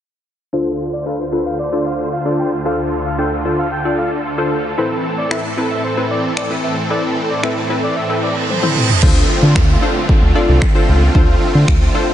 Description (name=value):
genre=dance-pop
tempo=113 BPM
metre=4/4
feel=straight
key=D dorian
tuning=A4 = 438 Hz
part: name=expressive synth lead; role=melody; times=0.5-8.9 s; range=C5 to G5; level=-24 LUFS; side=equal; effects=chorus, low-pass filter, tape echo
part: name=funky polysynth comp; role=accompaniment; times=0.5-12.1 s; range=C4 to D5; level=-20 LUFS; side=left 2 dB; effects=chorus, sidechain pumping, low-pass filter
part: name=supersaw chords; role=sustained chords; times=0.5-12.1 s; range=D2 to C5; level=-20 LUFS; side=right 1 dB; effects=ensemble chorus, sidechain pumping, low-pass filter
part: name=deep house drum kit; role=drums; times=5.3-11.8 s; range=crash cymbal, finger snaps, kick drum, toms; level=-16 LUFS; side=equal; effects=none
part: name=reverse cymbal and downlifter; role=sound effects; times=8.2-12.1 s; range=none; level=-22 LUFS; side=right 3 dB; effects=none
part: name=round analog bass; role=bass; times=9.0-11.9 s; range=C2 to D3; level=-12 LUFS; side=equal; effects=sidechain pumping
room=moderate lush hall reverb, RT60 2.5 s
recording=dreamy mix soaked in reverb, nothing above 10.3 kHz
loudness=-14 LUFS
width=side -11 dB against mid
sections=0.5-9.0 A section; 9.0-12.1 B section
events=filter sweep 0.5-9.0; reverse cymbal 8.2-9.0; drum fill 8.5-9.0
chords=0.5 Dm7; 4.8 Amadd9; 9.0 Dm7